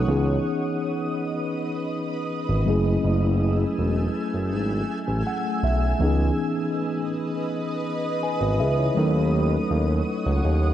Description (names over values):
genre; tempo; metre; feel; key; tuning
R&B; 81 BPM; 4/4; straight; C# minor; A4 = 440 Hz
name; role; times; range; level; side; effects
mellow tine electric piano; accompaniment; 0.0-10.7 s; E3 to G#5; -25 LUFS; equal; medium stereo tremolo
granular cloud pad; sustained chords; 0.0-10.7 s; A3 to E6; -30 LUFS; equal; built-in reverb
smooth synth bass; bass; 0.0-10.7 s; E1 to D#2; -22 LUFS; equal; none
room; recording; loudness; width
light reverb, digital ambience; worn, warbling old tape, cassette tape, warbly pitch drift; -22 LUFS; side -11 dB against mid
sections
0.1-10.7 A section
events
tine electric piano fill 4.9-6.0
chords
0.1 C#m9; 2.7 F#m9; 6.0 C#m9; 9.0 D#m7b5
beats
| 0.08 0.82 1.56 2.30 | 3.04 3.78 4.52 5.26 | 6.00 6.74 7.48 8.22 | 8.97 9.71 10.45